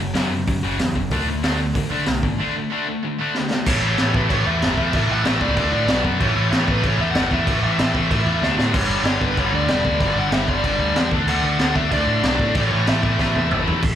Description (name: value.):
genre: punk rock.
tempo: 189 BPM.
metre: 4/4.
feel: straight.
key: A mixolydian from 3.7 s.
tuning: A4 = 441 Hz.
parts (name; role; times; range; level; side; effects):
cranked stack guitar; riff; 0.0-13.8 s; F#2 to D4; -27 LUFS; right 13 dB; overdrive, slapback echo.
tight distorted guitar; riff; 0.0-13.8 s; F#2 to D4; -24 LUFS; left 11 dB; distortion, slapback echo.
growling picked electric bass; bass; 0.0-14.0 s; E1 to D3; -23 LUFS; equal; overdrive.
raw garage drum kit; drums; 0.1-13.9 s; crash cymbal, hi-hat, kick drum, snare drum, toms; -22 LUFS; equal; none.
dark smooth lead guitar; melody; 3.7-13.5 s; B4 to F#5; -26 LUFS; equal; overdrive, slapback echo.
high-gain distorted guitar; riff; 3.7-13.8 s; G2 to D4; -29 LUFS; right 2 dB; none.
room: little or no reverb.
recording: live gig heard through the venue's PA, club reverb.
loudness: -17 LUFS.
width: side -10 dB against mid.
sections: 0.0-3.7 A section; 3.7-13.8 B section.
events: break 2.4-3.7; drum fill 3.4-3.7, 8.4-8.7, 13.2-13.8.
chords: 0.0 F#5; 1.1 D5; 3.7 A; 5.6 D5; 5.9 B5; 6.2 A; 8.4 D5; 8.7 G5; 11.1 D; 12.6 A.